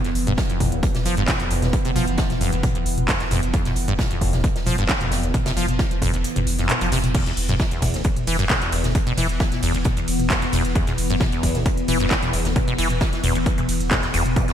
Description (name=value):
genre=driving peak-time techno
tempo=133 BPM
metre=4/4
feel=straight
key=unclear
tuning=A4 = 442 Hz
part: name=acid bass, saw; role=riff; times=0.0-14.5 s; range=D2 to F3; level=-25 LUFS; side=equal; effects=wide subtle chorus, sidechain pumping, digital delay
part: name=saturated sub bass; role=bass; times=0.0-14.5 s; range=E1 to F1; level=-27 LUFS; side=equal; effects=sidechain pumping, low-pass filter
part: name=deep dark ambient pad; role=drone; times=0.0-14.5 s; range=E3 to B3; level=-28 LUFS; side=left 1 dB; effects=chorus, built-in reverb, sidechain pumping
part: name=techno drum kit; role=drums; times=0.0-14.5 s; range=crash cymbal, handclaps, hi-hat, ride cymbal, toms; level=-25 LUFS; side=equal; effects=overdrive, sidechain pumping on hats, small room ambience, sidechain pumping on toms, sidechain pumping on cymbals, gated reverb
part: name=unplugged drum kit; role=drums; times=0.0-14.5 s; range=hi-hat, snare drum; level=-34 LUFS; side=right 2 dB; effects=sidechain pumping on hats, high-pass filter on hats, small room ambience, high-pass filter on snare, high-pass filter on room, gated reverb
part: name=electronic kick drum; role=drums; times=0.4-14.5 s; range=none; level=-23 LUFS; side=equal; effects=overdrive, small room ambience
room=light reverb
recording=bright 1980s-style digital production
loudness=-18 LUFS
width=side -10 dB against mid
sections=0.0-14.5 A section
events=kick drops out 6.2-7.1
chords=0.0 F5; 7.1 E5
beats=0.38 0.83 1.28 | 1.73 2.18 2.63 3.08 | 3.54 3.99 4.44 4.89 | 5.34 5.79 6.24 6.69 | 7.15 7.60 8.05 8.50 | 8.95 9.40 9.85 10.30 | 10.76 11.21 11.66 12.11 | 12.56 13.01 13.46 13.91 | 14.36